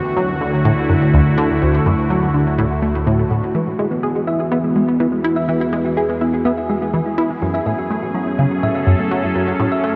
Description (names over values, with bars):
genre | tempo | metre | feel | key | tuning
ambient, sequencer-driven space music | 124 BPM | 4/4 | straight | unclear | A4 = 440 Hz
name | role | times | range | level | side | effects
phased analog pad | sustained chords | 0.0-10.0 s | D3 to A4 | -21 LUFS | equal | phaser, chorus
analog drone | bass | 0.3-10.0 s | D2 to F#2 | -32 LUFS | equal | chorus, phaser
tight sequenced synth | riff | 0.2-10.0 s | D2 to G#4 | -21 LUFS | equal | chorus, phaser, delay
thumb-piano-like synth pluck | arpeggios | 3.5-10.0 s | G#3 to E5 | -26 LUFS | equal | chorus, delay
room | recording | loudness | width
wet huge ambient reverb, RT60 7.2 s | dreamy mix soaked in reverb, cassette tape | -18 LUFS | mono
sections
0.0-3.5 A section; 3.5-10.0 B section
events
none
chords
0.0 D; 3.5 Eadd9; 7.4 F#m7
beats
0.16 0.65 1.13 | 1.61 2.10 2.58 3.07 | 3.55 4.03 4.52 5.00 | 5.49 5.97 6.45 6.94 | 7.42 7.90 8.39 8.87 | 9.36 9.84